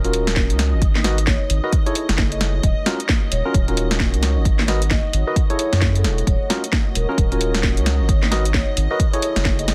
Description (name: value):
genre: UK garage, two-step garage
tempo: 132 BPM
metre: 4/4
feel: swing 61% on 16ths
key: Eb minor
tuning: A4 = 440 Hz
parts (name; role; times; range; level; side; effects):
- vibraphone with soft mallets; melody; 0.0-9.7 s; A4 to Eb5; -32 LUFS; equal; delay
- soft string machine; sustained chords; 0.0-9.7 s; Eb5; -38 LUFS; equal; ensemble chorus, sidechain pumping
- bright tine electric piano; stabs; 0.0-9.7 s; Db4 to Eb5; -28 LUFS; equal; analog chorus, tape echo
- soft dub sub bass; bass; 0.0-9.7 s; Eb1 to Gb2; -22 LUFS; equal; none
- garage drum kit; drums; 0.0-9.7 s; hi-hat, snare drum; -25 LUFS; equal; none
- deep dark ambient pad; texture; 0.0-9.7 s; Eb4 to Db5; -37 LUFS; equal; chorus, built-in reverb, sidechain pumping
- electronic kick drum; drums; 0.4-9.6 s; none; -22 LUFS; equal; none
room: digital ambience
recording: dense, heavily limited modern master, vinyl crackle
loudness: -19 LUFS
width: mono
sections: 0.0-9.7 A section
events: none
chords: 0.0 Ebm7; 0.8 Abm7; 1.7 Gbm7; 2.6 Ebm7; 4.5 Abm7; 5.4 Gbm7; 6.3 Ebm7; 8.1 Abm7; 9.0 Gbm7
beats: 0.36 | 0.82 1.27 1.73 2.18 | 2.63 3.09 3.54 4.00 | 4.45 4.91 5.36 5.82 | 6.27 6.72 7.18 7.63 | 8.09 8.54 9.00 9.45